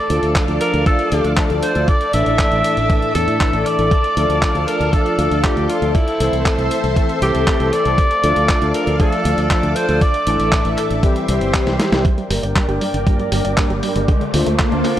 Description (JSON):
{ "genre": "italo disco", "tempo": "118 BPM", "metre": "4/4", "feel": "straight", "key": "D minor", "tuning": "A4 = 440 Hz", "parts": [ { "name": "bright alto saxophone", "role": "melody", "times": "0.0-10.8 s", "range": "E4 to E5", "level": "-20 LUFS", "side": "equal", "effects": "analog delay" }, { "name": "string machine, full ensemble", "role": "sustained chords", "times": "0.0-15.0 s", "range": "G4 to D6", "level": "-23 LUFS", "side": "equal", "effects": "ensemble chorus" }, { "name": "analog synth brass", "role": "stabs", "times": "0.1-15.0 s", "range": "G2 to C5", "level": "-21 LUFS", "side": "left 2 dB", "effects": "chorus, vintage 12-bit sampler grit" }, { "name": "fingered electric bass with an envelope filter", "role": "bass", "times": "0.1-15.0 s", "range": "G1 to A2", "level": "-21 LUFS", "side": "equal", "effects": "tube saturation" }, { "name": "dusty soul sampler-style drum kit", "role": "drums", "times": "0.1-15.0 s", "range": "handclaps, hi-hat, snare drum", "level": "-24 LUFS", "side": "equal", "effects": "high-pass filter on hats, high-pass filter on snare, high-pass filter on room" }, { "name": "electronic kick drum", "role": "drums", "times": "0.4-14.7 s", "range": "none", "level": "-16 LUFS", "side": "equal", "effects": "none" }, { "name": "riser", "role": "sound effects", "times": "13.2-15.0 s", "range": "none", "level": "-24 LUFS", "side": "equal", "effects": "none" }, { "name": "analog pluck", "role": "arpeggios", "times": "12.1-15.0 s", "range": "D3 to G4", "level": "-25 LUFS", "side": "right 4 dB", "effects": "chorus, cassette tape, analog delay" } ], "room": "little or no reverb", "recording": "dry, gritty hardware recording", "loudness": "-14 LUFS", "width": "side -12 dB against mid", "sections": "0.0-12.0 A section; 12.0-15.0 B section", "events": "drum fill 11.7-12.0; filter sweep on analog polysynth 12.0-15.0; filter sweep on string machine 12.0-15.0; riser 13.2-15.0", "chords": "0.0 Dm; 1.9 Asus4; 3.9 Dm; 5.9 Am/C; 8.0 Dm; 10.0 Asus4; 11.0 C; 12.0 Gm; 14.1 Dm7", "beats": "0.35 0.86 1.37 | 1.88 2.39 2.90 3.40 | 3.91 4.42 4.93 5.44 | 5.95 6.46 6.96 7.47 | 7.98 8.49 9.00 9.51 | 10.02 10.52 11.03 11.54 | 12.05 12.56 13.07 13.57 | 14.08 14.59" }